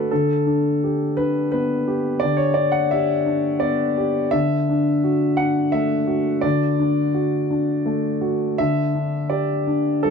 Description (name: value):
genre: neoclassical minimalist piano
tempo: 85 BPM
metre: 3/4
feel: rubato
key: unclear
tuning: A4 = 440 Hz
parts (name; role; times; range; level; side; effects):
- warm concert grand piano; solo; 0.0-10.1 s; D3 to F#5; -18 LUFS; left 1 dB; none
room: moderate studio reverb, RT60 0.6 s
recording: none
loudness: -18 LUFS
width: side -6 dB against mid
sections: 0.0-10.1 A section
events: none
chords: 0.1 G/D; 4.3 D; 8.6 G5/D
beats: | 0.10 0.81 1.52 | 2.22 2.93 3.63 | 4.34 5.04 5.74 | 6.45 7.16 7.87 | 8.59 9.30 10.04